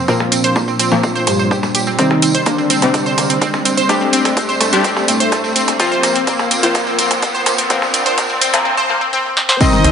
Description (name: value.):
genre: melodic techno.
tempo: 126 BPM.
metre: 4/4.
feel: straight.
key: unclear.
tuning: A4 = 443 Hz.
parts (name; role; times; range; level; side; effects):
warm analog pad; sustained chords; 0.0-9.9 s; F2 to G5; -25 LUFS; left 1 dB; chorus, sidechain pumping.
analog pluck; arpeggios; 0.0-9.9 s; A3 to C5; -18 LUFS; right 1 dB; chorus, sidechain pumping, digital delay.
synth brass stab; stabs; 0.0-9.9 s; Bb2 to G4; -20 LUFS; left 2 dB; chorus, sidechain pumping, digital delay.
riser; sound effects; 0.6-8.7 s; none; -25 LUFS; equal; none.
electronic kick drum; drums; 0.1-9.7 s; none; -19 LUFS; right 1 dB; high-pass filter on kick, high-pass filter on room.
tambourine; percussion; 0.1-9.8 s; none; -25 LUFS; right 3 dB; none.
techno drum kit; drums; 0.2-9.9 s; crash cymbal, hi-hat, percussion blips, snare drum; -18 LUFS; right 1 dB; high-pass filter on perc, high-pass filter on hats, high-pass filter on snare, high-pass filter on cymbals, high-pass filter on room.
analog synth brass; melody; 1.3-9.9 s; G2 to Eb4; -20 LUFS; left 1 dB; chorus, sidechain pumping, digital delay.
soft supersaw; second line; 9.6-9.9 s; Eb5; -16 LUFS; left 2 dB; sidechain pumping.
gritty driven synth bass; bass; 9.8-9.9 s; C2; -14 LUFS; equal; tube saturation, sidechain pumping.
room: wet lush hall reverb, RT60 1.8 s.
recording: high-pass filter, nothing above 10.6 kHz.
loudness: -12 LUFS.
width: side -7 dB against mid.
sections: 0.0-9.6 A section.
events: build-up 0.0-9.6; filter sweep on analog polysynth 0.0-9.6; filter sweep on analog synth pad 0.0-9.6; filter sweep 0.0-9.6; riser 0.6-8.7; drum fill 9.4.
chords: 0.1 Bb; 2.0 Cm7; 3.9 Gsus2; 5.8 Fsus4; 7.7 Bb.